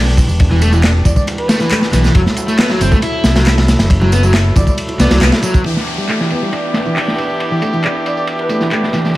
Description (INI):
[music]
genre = breakbeat, breaks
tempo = 137 BPM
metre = 4/4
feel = straight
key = E minor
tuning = A4 = 440 Hz
[part]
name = percussive tonewheel organ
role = sustained chords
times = 0.0-9.1 s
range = E3 to A4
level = -24 LUFS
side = equal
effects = overdrive, sidechain pumping
[part]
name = overdriven fingered electric bass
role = bass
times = 0.0-5.3 s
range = E1 to C2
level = -13 LUFS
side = equal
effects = none
[part]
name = crunchy breakbeat drum kit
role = drums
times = 0.1-9.2 s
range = hi-hat, kick drum, ride cymbal, snare drum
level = -16 LUFS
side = equal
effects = low-pass filter on kick, low-pass filter on cymbals, low-pass filter on hats, low-pass filter on snare, low-pass filter on room
[part]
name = electronic tambourine and handclaps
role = drums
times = 0.2-9.1 s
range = none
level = -23 LUFS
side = equal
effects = overdrive, low-pass filter on snare, low-pass filter on perc, low-pass filter on room
[part]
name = bongos and congas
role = percussion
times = 0.2-5.6 s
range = none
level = -24 LUFS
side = right 3 dB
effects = none
[part]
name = overdriven semi-hollow guitar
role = riff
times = 0.5-9.2 s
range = E3 to E4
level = -18 LUFS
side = equal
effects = tube saturation, low-pass filter, tape echo
[part]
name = breathy flute-like synth lead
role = melody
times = 1.0-5.2, 8.1-9.0 s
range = B4 to D5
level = -23 LUFS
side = equal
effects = chorus, tremolo, AM radio sound, tape echo
[part]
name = bright horn section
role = stabs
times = 5.7-9.1 s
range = B3 to G4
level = -20 LUFS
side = right 1 dB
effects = low-pass filter, tape echo
[part]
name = downlifter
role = sound effects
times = 5.7-9.2 s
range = none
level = -27 LUFS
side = left 2 dB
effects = none
[sound]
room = light reverb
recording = vinyl crackle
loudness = -11 LUFS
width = side -17 dB against mid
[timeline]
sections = 0.0-5.7 A section; 5.7-9.2 B section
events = band accent 5.2; filter sweep on horn section 5.7-9.2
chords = 0.0 Em7; 2.1 F#m7b5; 5.7 Em7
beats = | 0.40 0.83 1.27 1.71 | 2.15 2.59 3.02 3.46 | 3.90 4.34 4.78 5.21 | 5.65 6.09 6.53 6.97 | 7.40 7.84 8.28 8.72 | 9.15